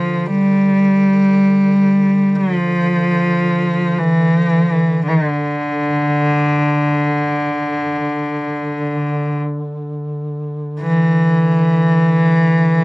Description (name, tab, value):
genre	caucasian folk, Caucasian lament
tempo	free time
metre	none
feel	none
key	D minor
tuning	A4 = 442 Hz
part	clear cello	melody	0.0-12.8 s	D3 to G3	-13 LUFS	equal	cassette tape
part	dark duduk	drone	0.0-12.8 s	D3	-24 LUFS	equal	cassette tape
room	moderate booth ambience, RT60 0.3 s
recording	home recording on cassette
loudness	-13 LUFS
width	side -23 dB against mid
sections	0.0-12.8 A section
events	none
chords	none